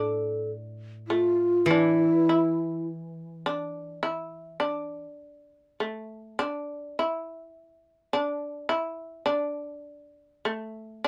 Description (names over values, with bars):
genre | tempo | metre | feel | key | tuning
japanese traditional, Japanese chamber music | 51 BPM | 4/4 | rubato | D hirajoshi | A4 = 439 Hz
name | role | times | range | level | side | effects
breathy mellow long shakuhachi | melody | 0.0-2.9 s | E4 to A4 | -25 LUFS | equal | none
shamisen | second line | 0.0-11.1 s | A3 to E4 | -33 LUFS | equal | none
koto | accompaniment | 0.0-5.0 s | A2 to E3 | -35 LUFS | equal | none
room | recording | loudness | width
light reverb | none | -28 LUFS | mono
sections
0.0-11.1 A section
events
none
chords
none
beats
0.50 | 1.69 2.88 4.04 5.20 | 6.38 7.54 8.68 9.84 | 11.03